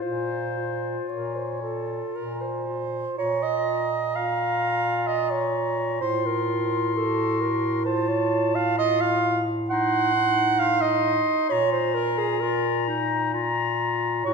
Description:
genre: classical, lyrical piece for single-reed quartet.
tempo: 54-67 BPM.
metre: 3/4.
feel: rubato.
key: Bb minor.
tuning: A4 = 442 Hz.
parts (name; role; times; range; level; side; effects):
warm clarinet; melody; 0.0-14.3 s; C5 to C#6; -29 LUFS; left 8 dB; none.
clear alto saxophone; second line; 0.0-14.3 s; F4 to Gb5; -25 LUFS; right 6 dB; none.
bright clarinet; accompaniment; 0.0-14.3 s; Eb4 to Gb4; -30 LUFS; left 7 dB; none.
clear bass clarinet; bass; 0.0-14.3 s; A2 to Bb2; -30 LUFS; right 1 dB; none.
room: wet scoring stage reverb, RT60 1.5 s.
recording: minimal, uncompressed stereo recording.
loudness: -22 LUFS.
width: side -5 dB against mid.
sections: 0.0-3.2 A section; 3.2-14.3 A section.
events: none.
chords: 0.0 Bbm; 6.0 F/A; 8.8 F7/A; 11.5 Bb5.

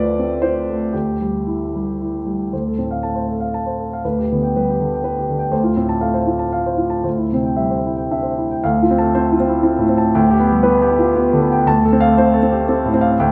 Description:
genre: neoclassical minimalist piano.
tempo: 112-122 BPM.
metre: 3/4.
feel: rubato.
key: D dorian.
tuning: A4 = 440 Hz.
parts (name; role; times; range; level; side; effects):
warm concert grand piano; solo; 0.0-13.3 s; D2 to A5; -18 LUFS; equal; none.
room: moderate recital hall reverb, RT60 1.6 s.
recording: recorded in a church or concert hall.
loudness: -18 LUFS.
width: mono.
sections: 0.0-2.5 A section; 2.5-8.6 B section; 8.6-13.3 C section.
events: none.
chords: 0.0 F/D; 0.9 Dsus24; 2.5 Dm7; 4.0 G/D; 5.5 F/D; 7.1 C/D; 8.6 Dm7; 10.2 G/D; 11.7 F/D.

